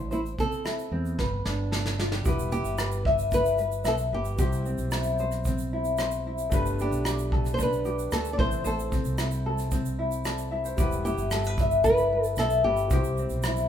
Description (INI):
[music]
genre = acoustic pop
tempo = 113 BPM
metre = 4/4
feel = straight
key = unclear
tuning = A4 = 439 Hz
[part]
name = nylon-string guitar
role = melody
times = 0.0-13.7 s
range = E4 to D5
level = -29 LUFS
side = right 1 dB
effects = none
[part]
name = tenor ukulele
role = accompaniment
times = 0.0-13.7 s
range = C4 to E5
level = -29 LUFS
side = left 2 dB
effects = none
[part]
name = mellow fretless electric bass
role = bass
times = 0.0-13.7 s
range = E1 to E2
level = -30 LUFS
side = equal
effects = none
[part]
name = soft brush drum kit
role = drums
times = 0.1-13.7 s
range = kick drum, rim click, shaker, snare drum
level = -30 LUFS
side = equal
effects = none
[part]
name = warm upright piano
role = accompaniment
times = 2.2-13.7 s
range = G3 to E5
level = -36 LUFS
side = left 3 dB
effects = none
[part]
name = egg shaker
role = percussion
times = 2.2-13.7 s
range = none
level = -43 LUFS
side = right 7 dB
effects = none
[sound]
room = wet large studio reverb, RT60 0.9 s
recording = band playing live in one room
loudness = -24 LUFS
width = side -9 dB against mid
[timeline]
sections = 0.0-2.2 A section; 2.2-13.7 B section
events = drum fill 1.2-2.2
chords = 0.0 Am; 1.2 Gadd9; 2.2 Em; 4.4 C; 6.5 Gadd9; 8.4 Am; 10.8 Em; 12.9 C